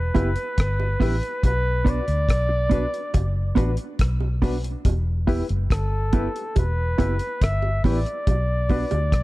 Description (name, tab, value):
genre	roots reggae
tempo	70 BPM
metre	4/4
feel	straight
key	E minor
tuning	A4 = 440 Hz
part	warm flugelhorn	melody	0.0-9.2 s	A4 to E5	-27 LUFS	equal	none
part	vintage muted fingered electric bass	bass	0.0-9.2 s	E1 to D2	-23 LUFS	equal	none
part	mellow electric guitar	accompaniment	0.1-8.8 s	B3 to G4	-27 LUFS	right 4 dB	none
part	barky reed electric piano	stabs	0.1-8.9 s	D4 to B4	-34 LUFS	left 6 dB	overdrive, fast tremolo
part	bongos	percussion	0.1-9.1 s	none	-35 LUFS	right 8 dB	none
part	cloth-damped thuddy drum kit	drums	0.2-9.2 s	hi-hat, kick drum, rim click	-22 LUFS	equal	none
room	small room ambience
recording	dark, warm production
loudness	-20 LUFS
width	side -18 dB against mid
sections	0.0-9.2 A section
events	none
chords	0.0 Em; 1.4 Bm; 4.9 Em; 8.3 Bm